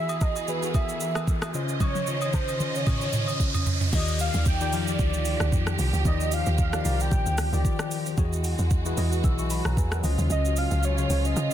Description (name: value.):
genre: amapiano.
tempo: 113 BPM.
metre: 4/4.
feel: swing 55% on 16ths.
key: unclear.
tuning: A4 = 440 Hz.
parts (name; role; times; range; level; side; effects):
warm velvety synth lead; melody; 0.0-11.5 s; B4 to G5; -31 LUFS; right 1 dB; chorus, ping-pong delay.
tine electric piano; accompaniment; 0.0-11.5 s; Db3 to E6; -31 LUFS; left 4 dB; phaser.
warm studio string section; sustained chords; 0.0-11.5 s; Eb3 to Eb5; -34 LUFS; right 3 dB; sidechain pumping.
riser and downlifter; sound effects; 0.9-8.2 s; none; -35 LUFS; right 1 dB; none.
smooth R&B drum kit; drums; 0.1-11.5 s; crash cymbal, hi-hat, kick drum, rim click, shaker, toms; -27 LUFS; right 1 dB; none.
agogo bells and woodblock; percussion; 0.1-3.7 s; none; -39 LUFS; left 4 dB; none.
deep log drum bass; bass; 3.9-11.5 s; Bb1 to Db3; -25 LUFS; equal; none.
room: digital ambience.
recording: dense, heavily limited modern master.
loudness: -23 LUFS.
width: side -11 dB against mid.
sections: 0.0-3.9 A section; 3.9-11.5 B section.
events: riser 0.9-3.9; drum fill 1.8-3.9; drop 3.9-11.5; kick muted 10.3-11.5.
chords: 0.0 Eadd9; 1.5 Dbmaj9; 3.9 Ebmaj9; 8.2 Emaj9; 10.0 Dbmaj9.